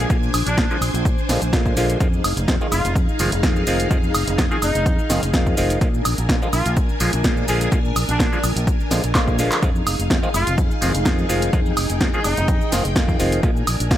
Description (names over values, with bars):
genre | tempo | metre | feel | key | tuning
filtered disco house | 126 BPM | 4/4 | swing 54% on 16ths | F dorian | A4 = 440 Hz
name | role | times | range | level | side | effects
mellow horn section | melody | 0.0-12.7 s | D4 to Ab4 | -26 LUFS | equal | sidechain pumping
bright clav | accompaniment | 0.0-14.0 s | D3 to F4 | -25 LUFS | equal | phaser, sidechain pumping
string machine, full ensemble | sustained chords | 0.0-14.0 s | D4 to Ab5 | -26 LUFS | left 1 dB | ensemble chorus, sidechain pumping
fingered electric bass | bass | 0.0-14.0 s | F1 to Bb2 | -23 LUFS | equal | sidechain pumping
electronic kick drum | drums | 0.1-14.0 s | none | -20 LUFS | equal | none
punchy analog drum machine | drums | 0.1-14.0 s | cabasa, handclaps, hi-hat, snare drum, woodblock | -24 LUFS | right 1 dB | none
room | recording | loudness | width
little or no reverb | none | -17 LUFS | side -12 dB against mid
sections
0.0-14.0 A section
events
drum fill 9.1-9.6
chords
0.0 Bb7; 2.0 Fm7; 5.8 Bb7; 9.6 Fm7; 13.4 Bb7